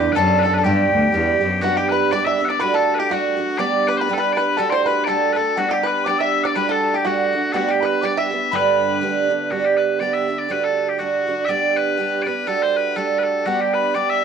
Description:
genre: celtic folk, Celtic polka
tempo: 122 BPM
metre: 2/4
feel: swing 57% on 8ths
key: G major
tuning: A4 = 440 Hz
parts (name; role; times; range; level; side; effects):
- loud bright bagpipes; melody; 0.0-14.2 s; F#4 to F#5; -22 LUFS; left 4 dB; cassette tape, plate reverb, analog delay
- bluegrass banjo; second line; 0.0-9.0 s; F#4 to E5; -27 LUFS; right 6 dB; cassette tape, plate reverb
- picked twelve-string acoustic guitar; accompaniment; 0.0-14.2 s; G2 to G4; -20 LUFS; right 7 dB; cassette tape, plate reverb
- clear cello; bass; 0.0-1.6 s; D2 to G2; -21 LUFS; left 2 dB; none
- mellow hollow mid whistle; second line; 0.2-9.0, 13.5-14.2 s; F#5 to E6; -23 LUFS; left 8 dB; cassette tape, plate reverb
room: wet small room reverb, RT60 0.6 s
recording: home recording on cassette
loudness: -17 LUFS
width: side -7 dB against mid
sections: 0.0-1.6 A section; 1.6-9.5 B section; 9.5-14.2 B section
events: none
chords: 0.0 Em7; 0.6 G; 2.6 D/G; 3.6 G; 4.6 D/G; 5.6 G; 6.6 D/G; 7.5 G; 8.5 Gadd9; 9.5 G; 10.5 D; 11.5 G; 12.5 D/G; 13.5 G

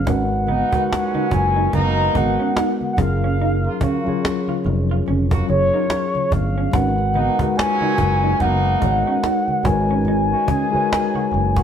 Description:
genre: R&B, neo-soul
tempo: 72 BPM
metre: 4/4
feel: swing 59% on 16ths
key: G# dorian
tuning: A4 = 438 Hz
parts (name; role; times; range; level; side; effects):
- mellow horn-like synth lead; melody; 0.0-11.6 s; C#5 to A#5; -21 LUFS; equal; chorus
- mellow tine electric piano; accompaniment; 0.0-11.6 s; F#3 to C#5; -23 LUFS; left 4 dB; fast stereo tremolo
- fingered electric bass; bass; 0.0-11.6 s; E#1 to G#1; -21 LUFS; right 1 dB; none
- congas; percussion; 0.0-11.5 s; none; -31 LUFS; right 1 dB; none
- electric guitar through a small old amp; second line; 0.1-11.6 s; B3 to F#4; -27 LUFS; right 5 dB; none
- cajon; drums; 0.1-11.6 s; none; -23 LUFS; right 1 dB; none
- warm horn section; stabs; 0.5-11.3 s; A#2 to G#4; -26 LUFS; right 3 dB; none
room: moderate stone room reverb, RT60 1.5 s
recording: band playing live in one room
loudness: -16 LUFS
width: side -8 dB against mid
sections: 0.0-11.6 A section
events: none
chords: 0.1 G#m9; 3.0 F#maj7; 6.7 G#m11

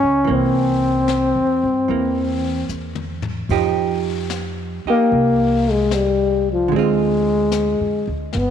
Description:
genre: jazz ballad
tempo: 74 BPM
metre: 4/4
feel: swing 68% on 8ths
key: F minor from 3.5 s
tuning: A4 = 442 Hz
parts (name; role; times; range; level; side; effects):
- breathy trombone; melody; 0.0-8.5 s; F3 to C#4; -17 LUFS; left 3 dB; none
- hollow-body jazz guitar; accompaniment; 0.0-8.4 s; D3 to G4; -23 LUFS; right 11 dB; none
- upright bass; bass; 0.0-8.5 s; G1 to G2; -25 LUFS; right 1 dB; none
- jazz brush drum kit; drums; 0.3-8.5 s; brushed snare drum, hi-hat, kick drum, ride cymbal, snare drum, toms; -32 LUFS; left 6 dB; none
room: moderate echo chamber reverb, RT60 2.1 s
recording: 1960s-style stereo with parts hard left and right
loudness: -16 LUFS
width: side -8 dB against mid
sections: 0.0-3.5 A section; 3.5-8.5 B section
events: drum fill 2.7-3.5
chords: 0.3 C7; 3.5 Fsus2; 6.7 Dm7b5

